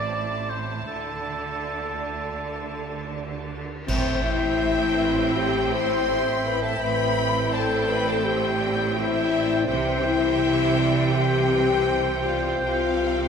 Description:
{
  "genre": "cinematic, emotional film score for orchestra",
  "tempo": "81 BPM",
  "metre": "4/4",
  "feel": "rubato",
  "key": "A minor from 3.9 s",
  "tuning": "A4 = 440 Hz",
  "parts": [
    { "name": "bright studio violin section", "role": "melody", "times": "0.0-13.3 s", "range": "G5 to A5", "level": "-34 LUFS", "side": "left 3 dB", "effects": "none" },
    { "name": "rich studio violin section", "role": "second line", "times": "0.0-13.3 s", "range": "E4 to C6", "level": "-32 LUFS", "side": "left 3 dB", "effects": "none" },
    { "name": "warm oboe", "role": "second line", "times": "0.0-13.3 s", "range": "A4 to G5", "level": "-32 LUFS", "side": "right 1 dB", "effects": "none" },
    { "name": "clear studio viola section", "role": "accompaniment", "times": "0.0-13.3 s", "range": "E3 to E4", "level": "-32 LUFS", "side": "right 2 dB", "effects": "none" },
    { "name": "bright studio cello section", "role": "bass", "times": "0.0-13.3 s", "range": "A2 to D3", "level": "-30 LUFS", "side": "right 4 dB", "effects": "none" },
    { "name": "clear studio double bass section", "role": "bass", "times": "0.0-13.3 s", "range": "A1 to D2", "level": "-31 LUFS", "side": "right 5 dB", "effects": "none" },
    { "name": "cymbal swell, clash cymbals and concert bass drum", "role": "percussion", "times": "0.9-5.3 s", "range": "none", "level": "-32 LUFS", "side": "right 1 dB", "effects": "none" },
    { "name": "hollow concert flute", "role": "second line", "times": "3.9-13.3 s", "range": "B4 to E5", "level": "-34 LUFS", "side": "left 2 dB", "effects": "none" },
    { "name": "warm clarinet", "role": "second line", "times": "3.9-13.3 s", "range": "C5", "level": "-33 LUFS", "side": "left 2 dB", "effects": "none" },
    { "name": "mellow French horn section", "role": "sustained chords", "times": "3.9-13.3 s", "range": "C4 to C5", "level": "-24 LUFS", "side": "left 5 dB", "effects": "none" }
  ],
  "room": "wet scoring stage reverb, RT60 1.8 s",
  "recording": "minimal, uncompressed stereo recording",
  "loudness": "-21 LUFS",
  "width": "side -6 dB against mid",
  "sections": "0.0-3.9 A section; 3.9-13.3 B section",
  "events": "band accent 3.9-4.6",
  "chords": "0.0 Am; 0.9 Dsus2; 3.9 Am7; 9.7 C",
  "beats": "0.14 | 0.89 1.64 2.39 3.13 | 3.88 4.61 5.36 6.10 | 6.82 7.54 8.26 8.97 | 9.69 10.41 11.14 11.87 | 12.62"
}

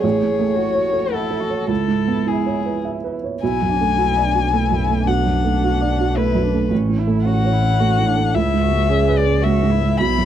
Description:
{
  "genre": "neoclassical piano and strings",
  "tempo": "109 BPM",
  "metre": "3/4",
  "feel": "rubato",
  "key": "B dorian",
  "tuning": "A4 = 440 Hz",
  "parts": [
    { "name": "muted violin", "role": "melody", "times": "0.0-10.2 s", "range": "G#4 to B5", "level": "-22 LUFS", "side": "left 8 dB", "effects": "none" },
    { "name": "muted cello", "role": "second line", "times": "0.0-10.2 s", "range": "C#4 to G#4", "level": "-26 LUFS", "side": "right 5 dB", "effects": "slapback echo" },
    { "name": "dark baby grand piano", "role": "accompaniment", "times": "0.0-10.2 s", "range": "A1 to F#5", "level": "-20 LUFS", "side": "right 5 dB", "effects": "none" },
    { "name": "muted double bass", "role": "bass", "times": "3.4-10.2 s", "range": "A1 to C#2", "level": "-20 LUFS", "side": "left 1 dB", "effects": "none" }
  ],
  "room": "little or no reverb",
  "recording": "dry, close 1970s-style studio recording",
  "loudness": "-16 LUFS",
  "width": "side -10 dB against mid",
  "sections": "0.0-3.4 A section; 3.4-10.2 B section",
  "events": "none",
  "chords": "0.0 F#m/A; 1.7 C#m7; 3.4 Bm7; 6.7 F#m/A; 8.4 C#m7",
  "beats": "| 0.03 0.58 1.13 | 1.69 2.27 2.84 | 3.41 3.97 4.52 | 5.07 5.61 6.16 | 6.71 7.26 7.81 | 8.35 8.90 9.44 | 9.99"
}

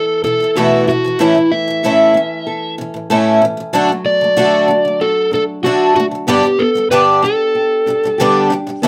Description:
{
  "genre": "pop",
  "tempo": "94 BPM",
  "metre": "4/4",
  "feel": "straight",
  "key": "unclear",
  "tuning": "A4 = 440 Hz",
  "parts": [
    { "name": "overdriven slide guitar", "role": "melody", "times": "0.0-8.5 s", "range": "E4 to E5", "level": "-17 LUFS", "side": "equal", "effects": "none" },
    { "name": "nylon-string guitar", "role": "arpeggios", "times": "0.0-8.9 s", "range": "E3 to A4", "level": "-24 LUFS", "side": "equal", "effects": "none" },
    { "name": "picked twelve-string acoustic guitar", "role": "accompaniment", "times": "0.2-8.9 s", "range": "E2 to G4", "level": "-16 LUFS", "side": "equal", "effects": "none" }
  ],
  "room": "moderate studio ambience, RT60 0.5 s",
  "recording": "none",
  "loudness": "-14 LUFS",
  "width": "mono",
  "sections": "0.0-8.9 A section",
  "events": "none",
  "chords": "0.0 Esus4; 1.2 A; 3.7 D; 6.3 G",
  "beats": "0.56 | 1.20 1.83 2.47 3.10 | 3.74 4.38 5.01 5.65 | 6.28 6.92 7.55 8.19 | 8.83"
}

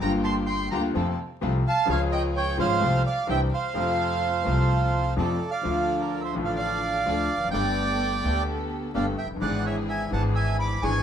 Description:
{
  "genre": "tango",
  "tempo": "128 BPM",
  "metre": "4/4",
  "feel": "rubato",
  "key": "F major",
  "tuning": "A4 = 438 Hz",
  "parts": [
    { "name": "bandoneon", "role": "melody", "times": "0.0-11.0 s", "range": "A4 to D6", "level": "-27 LUFS", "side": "right 4 dB", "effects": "none" },
    { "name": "warm chamber violin section", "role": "second line", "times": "0.0-5.1 s", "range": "F5 to C6", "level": "-31 LUFS", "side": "right 2 dB", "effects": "none" },
    { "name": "clear concert grand piano", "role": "accompaniment", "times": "0.0-11.0 s", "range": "F1 to G#4", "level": "-28 LUFS", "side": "left 4 dB", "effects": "none" },
    { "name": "dark chamber string section", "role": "stabs", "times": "0.0-11.0 s", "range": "Bb3 to C5", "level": "-33 LUFS", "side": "right 2 dB", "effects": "none" },
    { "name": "upright bass", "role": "bass", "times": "0.0-11.0 s", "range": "E1 to F2", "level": "-28 LUFS", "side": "equal", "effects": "none" }
  ],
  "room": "wet studio reverb, RT60 0.9 s",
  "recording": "minimal, uncompressed stereo recording, vinyl crackle",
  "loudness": "-23 LUFS",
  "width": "side -8 dB against mid",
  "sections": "0.0-5.6 A section; 5.6-11.0 B section",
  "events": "none",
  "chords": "0.0 Gm7; 0.9 F; 1.9 Db; 2.8 F/C; 3.3 Cadd9; 3.8 F; 5.6 Dm; 7.5 Gadd9; 9.4 E7/G#",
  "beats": "| 0.01 0.48 0.94 1.41 | 1.88 2.35 2.81 3.28 | 3.75 4.22 4.70 5.17 | 5.64 6.12 6.59 7.06 | 7.53 8.00 8.47 8.94 | 9.41 9.88 10.35 10.82"
}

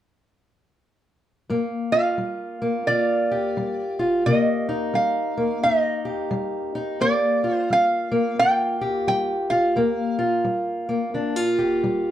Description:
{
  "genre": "acoustic country blues, solo or duo",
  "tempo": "87 BPM",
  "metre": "4/4",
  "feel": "swing 61% on 8ths",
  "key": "G minor",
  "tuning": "A4 = 440 Hz",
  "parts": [
    { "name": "fingerpicked steel-string acoustic guitar", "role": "accompaniment", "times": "1.5-12.1 s", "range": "G2 to G4", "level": "-22 LUFS", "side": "left 1 dB", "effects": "none" },
    { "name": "lap resonator guitar", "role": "melody", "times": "1.9-10.2 s", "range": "D5 to G5", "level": "-22 LUFS", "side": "right 2 dB", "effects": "none" }
  ],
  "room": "wet studio reverb, RT60 0.6 s",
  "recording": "dark, warm production",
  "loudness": "-20 LUFS",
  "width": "side -11 dB against mid",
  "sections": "1.5-12.1 A section",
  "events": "none",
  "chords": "1.5 Gm7; 4.3 Cm7; 7.0 Gm7",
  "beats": "| 1.50 2.19 2.88 3.57 | 4.26 4.95 5.64 6.33 | 7.02 7.71 8.40 9.08 | 9.77 10.46 11.14 11.83"
}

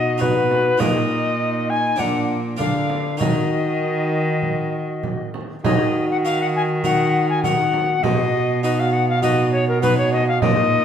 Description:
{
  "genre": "classical, renaissance-style consort dance",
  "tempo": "100 BPM",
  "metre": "4/4",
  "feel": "straight",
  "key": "Eb minor",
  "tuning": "A4 = 440 Hz",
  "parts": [
    { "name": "mellow alto recorder", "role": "melody", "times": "0.0-10.8 s", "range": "Bb4 to Ab5", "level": "-21 LUFS", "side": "left 4 dB", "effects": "none" },
    { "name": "harpsichord", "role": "accompaniment", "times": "0.0-10.8 s", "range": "Bb2 to B4", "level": "-27 LUFS", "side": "equal", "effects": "none" },
    { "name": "mellow bassoon", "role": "accompaniment", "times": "0.0-10.8 s", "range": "D4 to F#4", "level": "-24 LUFS", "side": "right 1 dB", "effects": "none" },
    { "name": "rich cello", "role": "bass", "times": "0.0-10.8 s", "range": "Bb2 to Eb3", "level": "-23 LUFS", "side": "right 1 dB", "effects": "none" },
    { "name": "frame drum", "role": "percussion", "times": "0.2-10.7 s", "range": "none", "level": "-25 LUFS", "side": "right 4 dB", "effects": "none" }
  ],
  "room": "wet stone room reverb, RT60 1.1 s",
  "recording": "heard from further back in the room",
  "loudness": "-17 LUFS",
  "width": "side -8 dB against mid",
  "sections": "0.0-5.6 A section; 5.6-10.8 A section",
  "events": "none",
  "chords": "0.0 B; 0.8 Bbsus4; 2.0 Bb; 3.2 Ebm; 8.0 B",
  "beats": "0.21 | 0.81 1.40 2.00 2.60 | 3.20 3.81 4.42 5.03 | 5.64 6.24 6.84 7.44 | 8.04 8.63 9.22 9.82 | 10.42"
}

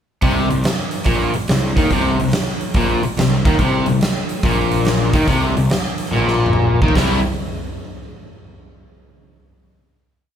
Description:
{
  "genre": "blues rock power trio and southern rock",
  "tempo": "143 BPM",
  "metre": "4/4",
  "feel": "swing 67% on 8ths",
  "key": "unclear",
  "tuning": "A4 = 440 Hz",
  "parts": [
    { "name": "overdriven semi-hollow guitar", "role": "riff", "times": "0.2-7.2 s", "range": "Bb2 to E4", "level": "-18 LUFS", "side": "left 1 dB", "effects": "none" },
    { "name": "fuzz picked electric bass", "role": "bass", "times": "0.2-7.2 s", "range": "Bb1 to Eb2", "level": "-22 LUFS", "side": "equal", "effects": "overdrive" },
    { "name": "huge arena drum kit", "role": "drums", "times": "0.2-7.1 s", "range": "hi-hat, kick drum, snare drum, toms", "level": "-19 LUFS", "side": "right 1 dB", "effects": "none" }
  ],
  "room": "moderate large studio reverb, RT60 0.9 s",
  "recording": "band playing live in one room",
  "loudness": "-15 LUFS",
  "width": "side -9 dB against mid",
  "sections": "0.2-7.0 riff; 7.0-8.6 final chord",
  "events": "drum fill 6.1-7.0",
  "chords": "0.2 Bbsus24; 7.0 C",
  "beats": "| 0.23 0.65 1.07 1.49 | 1.91 2.33 2.75 3.18 | 3.60 4.02 4.44 4.86 | 5.28 5.70 6.12 6.54 | 6.96"
}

